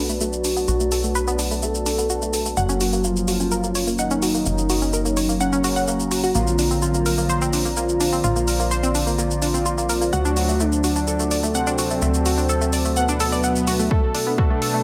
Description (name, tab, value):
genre	melodic techno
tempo	127 BPM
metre	4/4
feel	straight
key	unclear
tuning	A4 = 441 Hz
part	fat analog lead	melody	0.0-14.8 s	B3 to A4	-27 LUFS	equal	phaser, sidechain pumping, delay
part	deep dark ambient pad	sustained chords	0.0-14.8 s	F#3 to A#5	-32 LUFS	equal	chorus, built-in reverb, sidechain pumping
part	analog pluck	arpeggios	0.0-14.8 s	A3 to F#5	-28 LUFS	equal	chorus, sidechain pumping, tape echo
part	brassy analog pad	stabs	0.0-14.8 s	D3 to D4	-30 LUFS	equal	chorus, sidechain pumping, tape echo
part	plucky analog bass	bass	0.0-13.9 s	F#1 to D2	-28 LUFS	equal	tube saturation, sidechain pumping
part	electronic shaker and hi-hat	drums	0.1-14.7 s	none	-29 LUFS	equal	overdrive, high-pass filter on snare, sidechain pumping on perc, high-pass filter on perc, sidechain pumping on hats, high-pass filter on hats, sidechain pumping on toms, high-pass filter on toms
part	swell	sound effects	13.3-13.9 s	none	-36 LUFS	equal	none
part	analog drone	drone	14.1-14.8 s	B2	-33 LUFS	equal	chorus, phaser, sidechain pumping
part	electronic kick drum	drums	13.9-14.5 s	none	-21 LUFS	equal	overdrive
room	moderate digital room reverb, RT60 1.1 s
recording	none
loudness	-21 LUFS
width	mono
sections	0.0-13.9 A section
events	filter sweep on synth arpeggio sound 0.0-13.9; filter sweep on analog synth lead 0.0-13.9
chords	0.0 Bm7; 2.6 F#; 6.4 A#add9; 10.1 D; 13.9 Bm7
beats	0.21 | 0.68 1.15 1.63 2.10 | 2.57 3.04 3.52 3.99 | 4.46 4.93 5.41 5.88 | 6.35 6.82 7.30 7.77 | 8.24 8.71 9.19 9.66 | 10.13 10.60 11.07 11.55 | 12.02 12.49 12.96 13.44 | 13.91 14.38